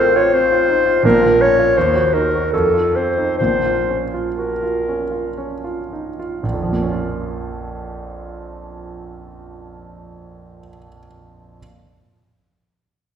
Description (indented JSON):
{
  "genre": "classical, romantic duo for clarinet and grand piano",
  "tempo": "54-86 BPM",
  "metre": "3/4",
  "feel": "rubato",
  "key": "Bb minor",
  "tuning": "A4 = 440 Hz",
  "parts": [
    { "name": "warm clarinet", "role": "melody", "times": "0.0-5.3 s", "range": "A4 to Db5", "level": "-16 LUFS", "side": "left 2 dB", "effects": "none" },
    { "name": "clear concert grand piano", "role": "accompaniment", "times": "0.0-11.6 s", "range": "A1 to Gb4", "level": "-21 LUFS", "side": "right 3 dB", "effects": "none" }
  ],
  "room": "wet recital hall reverb, RT60 1.4 s",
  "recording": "heard from further back in the room",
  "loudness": "-15 LUFS",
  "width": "side -8 dB against mid",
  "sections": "0.0-6.4 A section; 6.4-9.3 B section",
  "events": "slowing down 0.0-6.4",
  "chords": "0.0 F/A; 1.0 Bbm; 1.8 Ebm; 2.5 F7; 3.4 Bbm",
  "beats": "0.33 | 1.04 1.76 2.52 | 3.38 4.35 5.36 | 6.43 7.41 8.38"
}